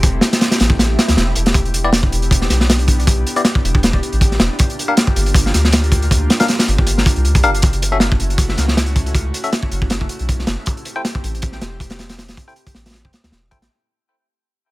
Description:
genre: drum and bass, jungle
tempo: 158 BPM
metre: 4/4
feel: swing 54% on 16ths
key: unclear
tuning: A4 = 440 Hz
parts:
  - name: airy breathy pad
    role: sustained chords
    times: 0.0-13.7 s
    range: A3 to G4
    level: -26 LUFS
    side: left 1 dB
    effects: chorus
  - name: soft dub sub bass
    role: bass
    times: 0.0-13.7 s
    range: E1 to D2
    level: -18 LUFS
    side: equal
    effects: none
  - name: crunchy breakbeat drum kit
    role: drums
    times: 0.0-13.7 s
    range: hi-hat, kick drum, snare drum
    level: -15 LUFS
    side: equal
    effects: none
  - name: swell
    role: sound effects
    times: 0.9-1.6 s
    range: none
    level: -30 LUFS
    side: right 3 dB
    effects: none
  - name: bell-like tine electric piano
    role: stabs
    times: 1.8-13.6 s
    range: B3 to G5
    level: -21 LUFS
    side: left 3 dB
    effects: dub echo
room: studio reverb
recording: none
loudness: -13 LUFS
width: side -19 dB against mid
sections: 0.0-13.7 A section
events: drop 0.0-13.7; kick drops out 0.8-1.6; swell 0.9-1.6; fade-out 7.6-13.7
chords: 0.0 Am7; 1.6 Em7; 4.6 Gm7; 7.6 F#m7; 10.7 Am7

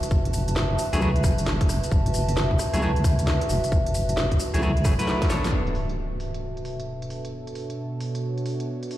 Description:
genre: UK garage, two-step garage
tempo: 133 BPM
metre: 4/4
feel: swing 64% on 16ths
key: B minor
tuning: A4 = 440 Hz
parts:
  - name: garage drum kit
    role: drums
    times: 0.0-9.0 s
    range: hi-hat, rim click, shaker, snare drum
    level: -31 LUFS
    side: equal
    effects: low-pass filter on hats, low-pass filter on snare, low-pass filter on perc, low-pass filter on room
  - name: warbly tape-like pad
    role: texture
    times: 0.0-9.0 s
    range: F#4 to A5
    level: -31 LUFS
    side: right 1 dB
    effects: chorus, built-in reverb, sidechain pumping
  - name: deep soft wobble bass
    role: bass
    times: 0.1-5.5 s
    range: E1 to C#2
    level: -24 LUFS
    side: equal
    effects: chorus
  - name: electronic kick drum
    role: drums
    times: 0.1-5.3 s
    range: none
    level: -23 LUFS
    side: equal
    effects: none
  - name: semi-hollow electric guitar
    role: stabs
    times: 0.9-5.8 s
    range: F#3 to C#5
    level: -27 LUFS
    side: left 1 dB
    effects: ping-pong delay
  - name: warm analog pad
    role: sustained chords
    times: 5.5-9.0 s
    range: B2 to C#5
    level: -31 LUFS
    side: right 1 dB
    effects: chorus, sidechain pumping
  - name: impact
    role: sound effects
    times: 5.5-7.3 s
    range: none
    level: -30 LUFS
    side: equal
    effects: none
room: moderate studio reverb, RT60 0.5 s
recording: played on a big sound system in a bare room, large studio reverb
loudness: -22 LUFS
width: side -14 dB against mid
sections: 0.0-5.5 A section; 5.5-9.0 B section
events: drum fill 5.1-5.5; band accent 5.4; impact 5.5-7.3; filter sweep on analog synth pad 5.5-9.0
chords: 0.0 F#m7; 5.5 Bm9

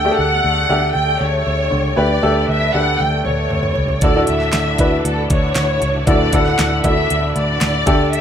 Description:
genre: piano-driven pop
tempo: 117 BPM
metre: 4/4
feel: straight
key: D major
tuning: A4 = 440 Hz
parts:
  - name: warm studio violin section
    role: melody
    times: 0.0-8.2 s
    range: A4 to G5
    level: -19 LUFS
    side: equal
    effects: none
  - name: clear upright piano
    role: accompaniment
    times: 0.0-8.2 s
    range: A2 to B4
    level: -19 LUFS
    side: left 1 dB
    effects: none
  - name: tonewheel organ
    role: sustained chords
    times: 0.0-8.2 s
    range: D3 to B4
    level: -27 LUFS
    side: equal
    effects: chorus vibrato, fast rotary speaker
  - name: vintage muted picked electric bass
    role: bass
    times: 0.0-8.2 s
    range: C#2 to D2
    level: -20 LUFS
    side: equal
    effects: none
  - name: pop drum kit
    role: drums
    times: 3.0-8.2 s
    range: hi-hat, kick drum, snare drum, toms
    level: -20 LUFS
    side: equal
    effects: none
room: digital ambience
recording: rough home demo mix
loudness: -14 LUFS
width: side -8 dB against mid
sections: 0.0-8.2 A section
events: drum fill 3.0-4.0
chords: 0.0 Gsus2; 4.0 Dadd9

